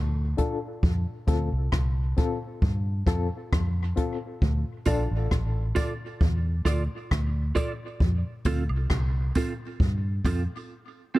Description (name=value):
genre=dub reggae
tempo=67 BPM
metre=4/4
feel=straight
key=unclear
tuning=A4 = 440 Hz
part: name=vintage muted fingered electric bass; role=bass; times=0.0-10.5 s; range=A1 to G2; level=-26 LUFS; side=equal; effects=none
part: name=overdriven reed electric piano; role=stabs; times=0.4-5.1 s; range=C4 to A4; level=-33 LUFS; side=left 5 dB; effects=fast tremolo, low-pass filter, tape echo
part: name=jazz brush drum kit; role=drums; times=0.4-10.5 s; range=hi-hat, kick drum, rim click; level=-27 LUFS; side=equal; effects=none
part: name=clean electric guitar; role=accompaniment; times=4.9-11.2 s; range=C4 to D5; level=-30 LUFS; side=right 4 dB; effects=ensemble chorus, low-pass filter, tape echo
part: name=tambourine and woodblock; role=percussion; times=4.9-10.5 s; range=none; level=-46 LUFS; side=right 5 dB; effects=tape echo
room=studio ambience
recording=dark, warm production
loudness=-24 LUFS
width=side -18 dB against mid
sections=0.0-11.2 A section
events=break 0.0-4.4, 10.7-11.2; filter sweep 0.0-11.2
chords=0.0 Dm; 0.8 F; 4.4 Dm; 8.0 F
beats=| 0.83 1.73 2.62 3.52 | 4.42 5.32 6.21 7.11 | 8.01 8.91 9.80 10.70